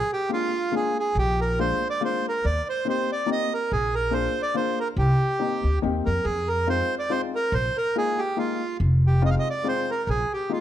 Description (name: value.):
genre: musette waltz.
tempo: 141 BPM.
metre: 3/4.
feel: swing 55% on 8ths.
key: unclear.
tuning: A4 = 440 Hz.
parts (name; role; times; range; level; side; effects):
accordion; melody; 0.0-10.6 s; F4 to F5; -25 LUFS; right 2 dB; none.
dark upright piano; accompaniment; 0.3-10.6 s; Ab3 to Ab4; -29 LUFS; left 7 dB; none.
upright bass; bass; 1.2-10.2 s; F1 to F2; -23 LUFS; equal; none.
room: light reverb.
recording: close, detailed microphones.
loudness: -22 LUFS.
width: side -11 dB against mid.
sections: 0.0-10.6 A section.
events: none.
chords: 0.0 Bb7; 2.4 Eb6; 3.7 Bb7; 5.0 Cm7; 6.3 Fm7; 7.5 Bb7sus4; 8.8 Fm7; 10.1 Bb7sus4.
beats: 0.28 0.71 | 1.14 1.57 2.00 | 2.42 2.85 3.27 | 3.69 4.12 4.54 | 4.97 5.39 5.82 | 6.25 6.68 7.10 | 7.53 7.95 8.38 | 8.80 9.22 9.65 | 10.08 10.50.